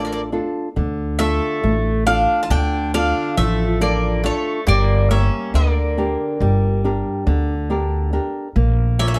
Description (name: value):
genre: greek folk, Greek bouzouki band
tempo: 139 BPM (eighths)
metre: 9/8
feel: straight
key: D harmonic minor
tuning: A4 = 440 Hz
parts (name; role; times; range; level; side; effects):
- Greek bouzouki; melody; 0.0-9.2 s; C#5 to A5; -25 LUFS; equal; none
- Greek bouzouki; second line; 0.0-9.2 s; A3 to F4; -28 LUFS; equal; none
- flamenco guitar; accompaniment; 0.0-9.2 s; D3 to D5; -25 LUFS; equal; none
- upright bass; bass; 0.0-9.2 s; G1 to D2; -21 LUFS; equal; none
room: light reverb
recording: dark, warm production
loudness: -19 LUFS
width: mono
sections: 0.8-9.2 A section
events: none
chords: 0.0 Dm; 4.7 Gm; 8.6 Bb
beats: 0.33 | 0.77 1.20 1.64 2.07 2.51 2.94 3.38 3.81 4.24 | 4.67 5.11 5.54 5.97 6.40 6.83 7.26 7.70 8.13 | 8.56 8.99